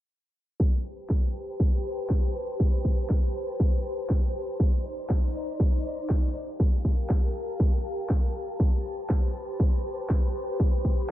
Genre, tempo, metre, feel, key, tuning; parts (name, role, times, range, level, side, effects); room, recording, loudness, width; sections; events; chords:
deep house; 120 BPM; 4/4; swing 58% on 16ths; A4 = 440 Hz
soft string machine; sustained chords; 0.9-11.1 s; Eb4 to B5; -34 LUFS; left 1 dB; ensemble chorus, vintage 12-bit sampler grit, sidechain pumping
electronic kick drum; drums; 0.6-11.0 s; -23 LUFS; equal; overdrive
electronic handclaps; drums; 1.1-10.2 s; -39 LUFS; equal; overdrive
little or no reverb; low-pass filter; -24 LUFS; side -14 dB against mid
0.6-11.1 A section
filter sweep 0.6-11.1
0.6 Am9; 4.6 Cm9; 6.3 Gm9; 8.6 Am9